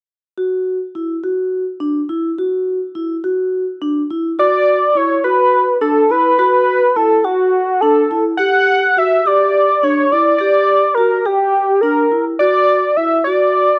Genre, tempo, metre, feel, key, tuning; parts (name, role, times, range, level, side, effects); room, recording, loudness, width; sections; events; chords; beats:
progressive instrumental, progressive; 209 BPM (eighths); 7/8; straight; A4 = 441 Hz
vibraphone with medium mallets; arpeggios; 0.4-13.7 s; D4 to G4; -20 LUFS; equal
octave-doubled lead; melody; 4.4-13.8 s; F#4 to F#5; -15 LUFS; equal; chorus
studio ambience; dry, close 1970s-style studio recording; -15 LUFS; mono
0.4-4.4 A section; 4.4-13.8 B section
0.4 Dadd9 (rootless); 8.4 G5; 12.4 Bm (rootless)
| 0.36 0.65 0.94 1.22 1.51 1.80 2.08 | 2.37 2.66 2.94 3.23 3.52 3.81 4.09 | 4.38 4.67 4.95 5.24 5.53 5.81 6.10 | 6.38 6.67 6.96 7.24 7.53 7.82 8.10 | 8.39 8.68 8.96 9.25 9.54 9.82 10.11 | 10.39 10.68 10.97 11.25 11.54 11.83 12.12 | 12.40 12.69 12.97 13.26 13.55